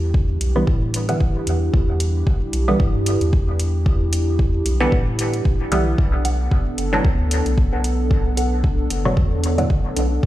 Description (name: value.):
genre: dub techno.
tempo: 113 BPM.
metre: 4/4.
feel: swing 56% on 16ths.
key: E minor.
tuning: A4 = 440 Hz.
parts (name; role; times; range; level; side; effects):
dark analog pad; sustained chords; 0.0-10.3 s; B3 to A4; -26 LUFS; equal; chorus, sidechain pumping.
warm sub bass; bass; 0.0-10.3 s; F#1 to A2; -21 LUFS; equal; sidechain pumping.
electronic kick drum; drums; 0.1-10.3 s; none; -18 LUFS; equal; none.
electronic hi-hat; drums; 0.4-10.1 s; none; -29 LUFS; equal; none.
filtered dub chord stab; stabs; 0.6-10.3 s; A2 to B3; -23 LUFS; right 1 dB; chorus, phaser, cassette tape, sidechain pumping, dub echo.
filtered dub chord stab; riff; 6.2-10.1 s; D4 to F#5; -30 LUFS; right 1 dB; phaser, sidechain pumping, dub echo.
room: light reverb.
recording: played on a big sound system in a bare room, stone room reverb.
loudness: -17 LUFS.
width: side -14 dB against mid.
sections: 0.0-10.3 A section.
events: none.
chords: 0.0 Em7; 6.0 Bm7.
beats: 0.14 0.67 1.21 | 1.74 2.27 2.80 3.33 | 3.86 4.39 4.92 5.45 | 5.98 6.51 7.05 7.58 | 8.11 8.64 9.17 9.70 | 10.23.